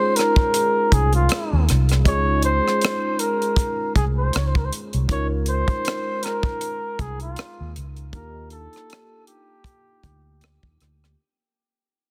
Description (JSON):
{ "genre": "R&B, neo-soul", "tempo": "79 BPM", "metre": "4/4", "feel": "swing 56% on 16ths", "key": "Db major", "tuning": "A4 = 440 Hz", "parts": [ { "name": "trumpet with bucket mute", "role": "melody", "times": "0.0-10.7 s", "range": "F4 to Db5", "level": "-26 LUFS", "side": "equal", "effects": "none" }, { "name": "barky tine electric piano", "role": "accompaniment", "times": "0.0-11.2 s", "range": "Ab3 to Db5", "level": "-31 LUFS", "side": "equal", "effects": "overdrive, analog chorus" }, { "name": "tight funk drum kit", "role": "drums", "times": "0.2-11.1 s", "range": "hi-hat, kick drum, rim click", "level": "-25 LUFS", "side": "equal", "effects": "soft clipping on snare" }, { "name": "vintage muted fingered electric bass", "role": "bass", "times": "0.9-11.1 s", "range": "C2 to Eb2", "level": "-24 LUFS", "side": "equal", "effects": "none" } ], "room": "light reverb, small room reverb", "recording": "dense, heavily limited modern master", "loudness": "-21 LUFS", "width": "mono", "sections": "0.0-11.2 A section", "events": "fade-out 0.0-11.2", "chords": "0.0 Dbmaj9; 8.1 Ebmaj9" }